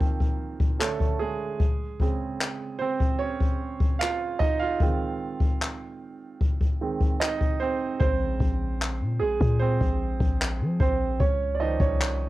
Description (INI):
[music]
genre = contemporary R&B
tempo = 75 BPM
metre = 4/4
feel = straight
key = Bb minor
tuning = A4 = 440 Hz
[part]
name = warm baby grand piano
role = accompaniment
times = 0.0-12.3 s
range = Db3 to F5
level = -28 LUFS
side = right 5 dB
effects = cassette tape
[part]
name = jazz brush drum kit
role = drums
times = 0.0-12.2 s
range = handclaps, kick drum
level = -25 LUFS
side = left 1 dB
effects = cassette tape
[part]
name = warm 808-style bass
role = bass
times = 8.0-12.3 s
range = Bb1 to F3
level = -26 LUFS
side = left 1 dB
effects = none
[sound]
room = light reverb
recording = home recording on cassette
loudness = -23 LUFS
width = side -16 dB against mid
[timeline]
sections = 0.0-12.3 A section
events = break 0.0-8.0; grand piano solo 0.0-12.3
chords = 0.0 Bbsus24/Eb; 0.8 Amaj7; 1.6 Dbmaj9; 4.8 Fm7; 8.0 Bbm9; 11.2 Dbmaj9